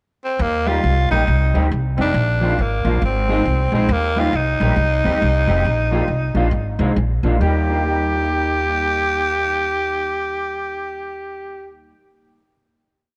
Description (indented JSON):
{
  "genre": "ska",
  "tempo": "137 BPM",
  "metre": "4/4",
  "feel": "swing 62% on 8ths",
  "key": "Eb major",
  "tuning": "A4 = 440 Hz",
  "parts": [
    { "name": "growling tenor saxophone", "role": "melody", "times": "0.2-11.7 s", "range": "Bb3 to G4", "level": "-23 LUFS", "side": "equal", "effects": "none" },
    { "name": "upright bass", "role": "bass", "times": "0.4-11.9 s", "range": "F1 to Eb2", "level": "-22 LUFS", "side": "equal", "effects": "none" },
    { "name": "mellow electric guitar", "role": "accompaniment", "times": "0.7-12.0 s", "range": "F3 to Ab4", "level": "-26 LUFS", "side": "equal", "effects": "analog chorus, tape echo" }
  ],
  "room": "light reverb, studio reverb",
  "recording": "none",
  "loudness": "-19 LUFS",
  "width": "mono",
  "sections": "0.0-0.4 pickup bar; 0.4-7.4 head; 7.4-10.9 final chord",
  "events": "none",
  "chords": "0.4 Eb; 1.3 Cm; 2.1 Bb; 3.0 Ab; 3.9 Eb; 4.8 Cm; 5.7 Bb; 6.5 Ab; 7.0 Bb; 7.4 Eb"
}